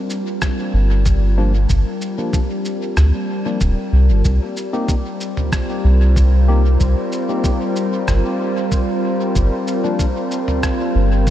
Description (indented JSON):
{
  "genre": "ambient dub",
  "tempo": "94 BPM",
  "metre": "4/4",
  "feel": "straight",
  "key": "unclear",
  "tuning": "A4 = 436 Hz",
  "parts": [
    { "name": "warbly tape-like pad", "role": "sustained chords", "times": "0.0-11.3 s", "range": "G3 to Bb4", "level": "-21 LUFS", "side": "left 1 dB", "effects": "chorus, built-in reverb, vintage 12-bit sampler grit" },
    { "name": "lo-fi sampler-style drum kit", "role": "drums", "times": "0.1-11.3 s", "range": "cabasa, rim click, toms", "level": "-29 LUFS", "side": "equal", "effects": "dub echo" },
    { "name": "electronic kick drum", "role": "drums", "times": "0.4-11.3 s", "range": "none", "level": "-19 LUFS", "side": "equal", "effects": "none" },
    { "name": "soft dub sub bass", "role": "bass", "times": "0.7-11.3 s", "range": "D1 to D2", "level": "-13 LUFS", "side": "equal", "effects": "tube saturation" },
    { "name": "barky tine electric piano", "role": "stabs", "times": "1.4-10.0 s", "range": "F3 to G4", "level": "-28 LUFS", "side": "left 2 dB", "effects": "wide subtle chorus, dub echo" },
    { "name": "wind-like tuned noise texture", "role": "texture", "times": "5.2-11.3 s", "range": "C5", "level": "-30 LUFS", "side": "equal", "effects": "built-in reverb" }
  ],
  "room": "light reverb, digital ambience",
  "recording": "none",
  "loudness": "-15 LUFS",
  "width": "side -12 dB against mid",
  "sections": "0.0-11.3 A section",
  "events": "none",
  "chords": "0.0 Gm7; 4.2 C7(no3); 9.4 Gm7"
}